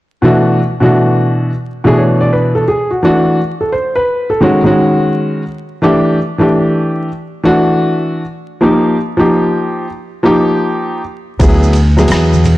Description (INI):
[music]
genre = hip hop, jazz-hop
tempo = 86 BPM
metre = 4/4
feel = swing 65% on 16ths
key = unclear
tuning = A4 = 438 Hz
[part]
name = warm grand piano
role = accompaniment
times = 0.2-12.6 s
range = B2 to D5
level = -11 LUFS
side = equal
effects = none
[part]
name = upright bass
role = bass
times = 11.4-12.6 s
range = D2 to E2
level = -9 LUFS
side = equal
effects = none
[part]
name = dusty soul sampler-style drum kit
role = drums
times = 11.4-12.6 s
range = hi-hat, kick drum, ride cymbal, rim click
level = -15 LUFS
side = equal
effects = none
[part]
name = maracas and congas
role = percussion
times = 11.4-12.6 s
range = none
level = -22 LUFS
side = right 4 dB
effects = none
[sound]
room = light reverb, small room ambience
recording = blown-out, overdriven recording, vinyl crackle, overdrive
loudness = -10 LUFS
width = side -17 dB against mid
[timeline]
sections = 0.2-12.6 A section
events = none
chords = 0.2 Bm7; 3.0 E9sus4; 4.4 F#m69/D#; 5.8 Em9; 8.6 D#add9; 11.4 Dadd9